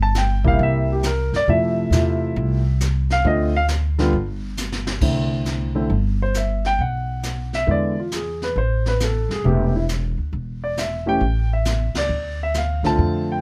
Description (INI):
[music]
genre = jazz piano trio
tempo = 136 BPM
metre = 4/4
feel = swing 67% on 8ths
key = C major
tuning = A4 = 440 Hz
[part]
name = warm grand piano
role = melody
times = 0.0-13.4 s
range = C3 to A5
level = -24 LUFS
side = equal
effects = none
[part]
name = upright bass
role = bass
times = 0.0-13.4 s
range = E1 to F#2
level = -24 LUFS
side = equal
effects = none
[part]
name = jazz brush drum kit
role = drums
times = 0.1-13.4 s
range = brushed snare drum, crash cymbal, hi-hat, kick drum, ride cymbal, snare drum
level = -29 LUFS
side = equal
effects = none
[sound]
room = little or no reverb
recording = none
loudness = -21 LUFS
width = mono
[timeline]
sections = 0.0-5.0 A section; 5.0-13.4 B section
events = drum fill 4.6-5.0; band accent 11.9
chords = 0.0 Gm; 0.6 C7; 1.5 Fmaj7; 3.2 Dm7; 4.1 N.C.; 5.0 C69; 6.8 B5; 7.7 E7; 8.6 Amadd9; 10.3 Em; 11.2 A; 12.1 Dm7